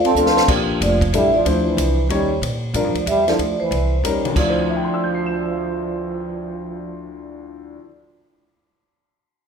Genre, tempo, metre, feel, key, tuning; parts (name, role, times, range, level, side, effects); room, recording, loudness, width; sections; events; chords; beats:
jazz, small-group swing and bop; 186 BPM; 3/4; swing 63% on 8ths; D minor; A4 = 440 Hz
vibraphone with soft mallets; melody; 0.0-7.8 s; A4 to C6; -22 LUFS; equal
breathy trombone; second line; 0.0-7.1 s; E3 to F4; -24 LUFS; right 5 dB
upright bass; bass; 0.0-7.8 s; F1 to Bb2; -24 LUFS; right 1 dB
compact cocktail drum kit; drums; 0.0-6.2 s; crash cymbal, cymbal swell, hi-hat, kick drum, ride cymbal, snare drum; -25 LUFS; right 1 dB
warm upright piano; accompaniment; 0.2-8.0 s; D2 to E7; -24 LUFS; left 5 dB
moderate recital hall reverb, RT60 1.4 s; minimal, uncompressed stereo recording; -17 LUFS; side -6 dB against mid
0.5-4.4 A section; 4.4-6.3 B section
drum fill 0.2-0.5
0.5 Bb6; 1.1 A7sus4; 1.4 Dm9; 2.1 Eb7; 2.4 Bb6; 3.1 A7sus4; 3.4 Dsus2; 4.0 Eb7; 4.4 Dm9
0.16 | 0.48 0.80 1.13 | 1.45 1.77 2.09 | 2.42 2.74 3.06 | 3.38 3.71 4.03 | 4.35 4.68 5.00 | 5.32 5.65 5.97